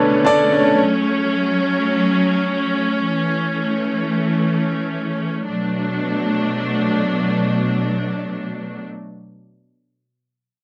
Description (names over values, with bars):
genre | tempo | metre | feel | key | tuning
pop | free time | none | none | unclear | A4 = 440 Hz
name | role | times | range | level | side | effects
warm grand piano | accompaniment | 0.0-0.8 s | B2 to D5 | -16 LUFS | equal | none
clear studio string section | sustained chords | 0.0-8.8 s | B2 to D4 | -21 LUFS | equal | none
room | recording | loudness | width
light reverb | dry, close 1970s-style studio recording | -19 LUFS | mono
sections
0.0-5.5 A section; 5.5-8.1 B section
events
slowing down 0.8-5.5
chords
0.0 Bm7; 0.8 F#m; 3.0 A; 5.5 Bm7